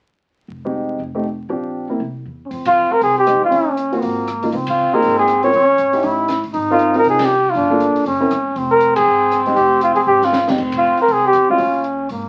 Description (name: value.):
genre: jazz, small-group swing and bop.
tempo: 238 BPM.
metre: 4/4.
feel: swing 59% on 8ths.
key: F minor.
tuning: A4 = 435 Hz.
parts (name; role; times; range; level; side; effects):
upright bass; bass; 0.5-12.3 s; Fb1 to F2; -34 LUFS; equal; none.
warm grand piano; accompaniment; 0.6-11.6 s; F2 to Bb4; -23 LUFS; equal; none.
trombone with metal mute; second line; 2.5-12.3 s; Bb3 to E4; -22 LUFS; equal; none.
open jazz drum kit; drums; 2.5-12.2 s; crash cymbal, hi-hat, kick drum, ride cymbal, rim click, snare drum; -33 LUFS; equal; none.
trumpet with bucket mute; melody; 2.7-11.8 s; F4 to Db5; -16 LUFS; equal; none.
room: moderate studio reverb, RT60 0.5 s.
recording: very old 78 rpm record, vinyl crackle.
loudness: -16 LUFS.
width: mono.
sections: 0.5-2.5 A section; 2.5-10.6 B section; 10.6-12.3 B section.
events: band accent 2.6, 4.7, 7.2, 8.9, 10.7; drum fill 10.1-10.6.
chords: 0.5 Fm7; 1.0 F7; 1.5 Bb6; 2.0 C; 2.5 Fm7; 3.5 Ebm9; 4.0 Ab13; 4.5 Db69; 5.5 Bbm7; 6.0 A7#11; 6.5 Ab69; 7.6 Gm9; 8.1 Gb7#11; 8.6 Fm; 10.6 F5; 11.6 Ebsus2.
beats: | 0.49 0.74 0.99 1.25 | 1.50 1.75 2.00 2.26 | 2.51 2.76 3.01 3.27 | 3.52 3.77 4.02 4.28 | 4.53 4.78 5.03 5.28 | 5.54 5.79 6.04 6.29 | 6.55 6.80 7.05 7.30 | 7.55 7.81 8.06 8.31 | 8.56 8.81 9.07 9.32 | 9.57 9.82 10.07 10.33 | 10.58 10.83 11.08 11.33 | 11.59 11.84 12.09.